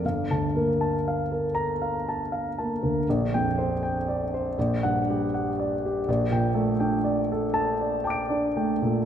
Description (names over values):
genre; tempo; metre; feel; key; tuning
classical, impressionist solo piano; 40 BPM (dotted quarters); 6/8; rubato; unclear; A4 = 440 Hz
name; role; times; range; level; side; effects
warm grand piano; solo; 0.0-9.1 s; G1 to D7; -23 LUFS; equal; none
room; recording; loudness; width
moderate concert hall reverb, RT60 2.2 s; none; -23 LUFS; side -9 dB against mid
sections
0.0-9.1 A section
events
none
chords
0.0 Gm9; 3.1 Bb69; 4.6 Gmmaj7/Bb; 6.1 Gmadd9/Bb